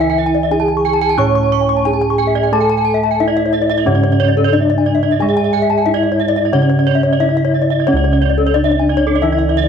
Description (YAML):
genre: Balinese gamelan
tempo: 90 BPM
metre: 4/4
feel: straight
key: C# pelog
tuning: A4 = 440 Hz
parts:
  - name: gamelan-type bronze metallophone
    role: melody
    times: 0.0-9.7 s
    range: C#4 to C#5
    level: -18 LUFS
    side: equal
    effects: none
  - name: gamelan-type bronze metallophone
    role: accompaniment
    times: 0.0-9.7 s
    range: C#3 to C#4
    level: -21 LUFS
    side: equal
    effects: none
  - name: gamelan-type bronze metallophone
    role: arpeggios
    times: 0.0-9.7 s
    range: A4-20c to C#6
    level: -18 LUFS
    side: left 10 dB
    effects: none
  - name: gamelan-type bossed gongs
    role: bass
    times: 0.0-9.7 s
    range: C#2 to A4-20c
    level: -18 LUFS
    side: right 1 dB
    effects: tube saturation
  - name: gamelan-type bronze metallophone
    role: arpeggios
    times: 0.1-9.6 s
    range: A4-20c to C#6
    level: -20 LUFS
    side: right 11 dB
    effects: none
room: light reverb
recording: 1960s-style stereo with parts hard left and right, faint mains hum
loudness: -12 LUFS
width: side -7 dB against mid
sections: 0.0-9.7 A section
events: none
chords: none